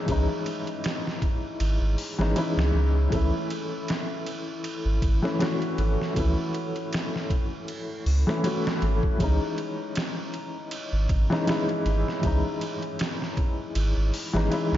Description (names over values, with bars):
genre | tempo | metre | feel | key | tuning
trip hop | 79 BPM | 4/4 | swing 56% on 16ths | C# minor | A4 = 439 Hz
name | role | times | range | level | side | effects
felt-muted upright piano | accompaniment | 0.0-14.8 s | E3 to F#4 | -28 LUFS | left 1 dB | tremolo, vintage 12-bit sampler grit, tape echo
warm sub bass | bass | 0.1-14.8 s | G#1 to C#2 | -24 LUFS | equal | none
trip hop sampler-style drum kit | drums | 0.1-14.8 s | hi-hat, kick drum, ride cymbal, snare drum | -30 LUFS | right 1 dB | none
room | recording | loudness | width
moderate lush hall reverb, RT60 2.4 s | dreamy mix soaked in reverb, nothing above 7.5 kHz | -24 LUFS | side -12 dB against mid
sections
0.0-14.8 A section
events
none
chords
0.0 C#madd9; 3.1 A; 9.2 C#madd9